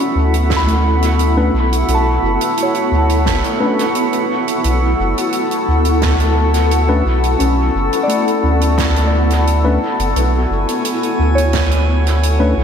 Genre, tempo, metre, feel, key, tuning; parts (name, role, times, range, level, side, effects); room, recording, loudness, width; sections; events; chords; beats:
ambient dub; 87 BPM; 4/4; straight; B dorian; A4 = 441 Hz
granular cloud pad; sustained chords; 0.0-12.6 s; B3 to F#5; -18 LUFS; left 1 dB; built-in reverb
soft synth bell; arpeggios; 0.0-12.6 s; A3 to B5; -22 LUFS; left 1 dB; chorus, tape echo
soft-mallet drum kit; drums; 0.0-12.4 s; hi-hat, snare drum; -25 LUFS; right 4 dB; dub echo
drifting glass-harmonics texture; texture; 0.0-12.6 s; A3 to G#5; -23 LUFS; equal; chorus, built-in reverb
soft dub sub bass; bass; 0.2-12.6 s; F#1 to D2; -15 LUFS; equal
electronic kick drum; drums; 0.5-11.7 s; -22 LUFS; equal; overdrive
tine electric piano; stabs; 1.4-12.5 s; A3 to B4; -23 LUFS; left 3 dB; dub echo
light reverb, studio reverb; -13 LUFS; side -7 dB against mid
0.0-12.6 A section
0.0 Bm9
0.50 1.19 | 1.88 2.57 3.26 3.95 | 4.64 5.33 6.02 6.71 | 7.40 8.09 8.78 9.47 | 10.16 10.85 11.54 12.23